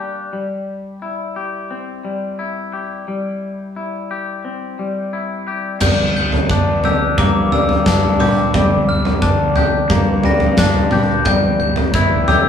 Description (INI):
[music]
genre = post-rock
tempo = 88 BPM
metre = 4/4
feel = straight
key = G dorian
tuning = A4 = 438 Hz
[part]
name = twangy electric guitar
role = arpeggios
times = 0.0-12.5 s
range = G3 to G4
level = -19 LUFS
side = left 3 dB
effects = warbly pitch drift
[part]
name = glockenspiel with brass mallets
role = arpeggios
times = 5.8-12.5 s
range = D6 to Bb6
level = -23 LUFS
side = left 2 dB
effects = none
[part]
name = fuzz fingered electric bass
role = bass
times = 5.8-12.4 s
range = G1 to G2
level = -20 LUFS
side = right 1 dB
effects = overdrive
[part]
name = huge arena drum kit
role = drums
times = 5.8-12.4 s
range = crash cymbal, kick drum, snare drum, toms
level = -16 LUFS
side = right 1 dB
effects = none
[sound]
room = wet large studio reverb, RT60 1.0 s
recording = band playing live in one room, small room reverb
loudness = -15 LUFS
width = side -8 dB against mid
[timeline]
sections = 0.0-5.8 A section; 5.8-12.5 B section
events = none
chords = 0.3 C/G; 5.8 Gm; 11.3 C/G (rootless)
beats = | 0.33 1.02 1.70 2.39 | 3.08 3.76 4.45 5.13 | 5.81 6.50 7.18 7.86 | 8.54 9.22 9.90 10.58 | 11.26 11.94